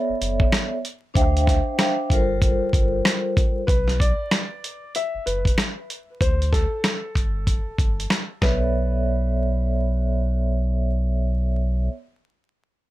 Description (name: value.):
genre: hip hop, boom-bap hip-hop.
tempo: 95 BPM.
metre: 4/4.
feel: swing 62% on 16ths.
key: B minor.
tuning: A4 = 440 Hz.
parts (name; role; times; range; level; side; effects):
vibraphone with medium mallets; accompaniment; 0.0-3.6, 8.4-11.9 s; G3 to G5; -25 LUFS; equal; high-pass filter, low-pass filter.
saturated sub bass; bass; 0.1-11.9 s; F#1 to D2; -23 LUFS; equal; none.
dusty soul sampler-style drum kit; drums; 0.2-8.6 s; hi-hat, kick drum, rim click, snare drum; -21 LUFS; equal; none.
dark upright piano; melody; 3.7-10.6 s; A4 to E5; -29 LUFS; left 2 dB; high-pass filter, low-pass filter, digital delay.
room: little or no reverb.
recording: vinyl crackle.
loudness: -20 LUFS.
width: side -16 dB against mid.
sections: 0.0-3.7 A section; 3.7-8.7 B section; 8.7-11.3 C section.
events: break 3.7-8.7.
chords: 0.0 Bm11; 1.2 Dm11; 2.1 Gm11; 3.7 Bm; 6.2 D5; 7.2 Gsus2; 8.4 Bm11.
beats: 0.52 | 1.16 1.79 2.42 3.05 | 3.68 4.31 4.95 5.58 | 6.21 6.84 7.47 8.10 | 8.73 9.37 10.00 10.63.